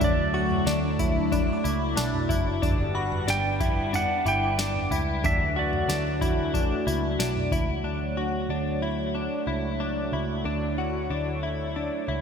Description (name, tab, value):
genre	dream pop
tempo	92 BPM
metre	4/4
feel	straight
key	D major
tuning	A4 = 440 Hz
part	clean lap steel guitar	melody	0.0-6.8 s	D5 to G5	-29 LUFS	right 2 dB	tape echo
part	phased analog pad	sustained chords	0.0-12.2 s	E3 to C#5	-30 LUFS	right 1 dB	phaser, chorus
part	direct-recorded clean electric guitar	arpeggios	0.0-12.2 s	D4 to F#4	-29 LUFS	left 3 dB	analog chorus, tape echo
part	vintage muted picked electric bass	bass	0.0-12.2 s	F#1 to D2	-30 LUFS	equal	none
part	booming analog drum machine	drums	0.0-7.7 s	kick drum, snare drum, tambourine, toms	-29 LUFS	right 1 dB	none
part	glassy synth bell	texture	0.0-5.5 s	A5 to D6	-39 LUFS	equal	chorus, tape echo
room	wet scoring stage reverb, RT60 1.8 s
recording	none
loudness	-24 LUFS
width	side -6 dB against mid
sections	0.0-7.8 A section; 7.8-12.2 B section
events	none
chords	0.0 Dmaj7; 2.6 G; 5.2 Dadd9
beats	| 0.02 0.67 1.32 1.97 | 2.63 3.28 3.93 4.58 | 5.24 5.89 6.54 7.19 | 7.84 8.50 9.15 9.80 | 10.45 11.11 11.76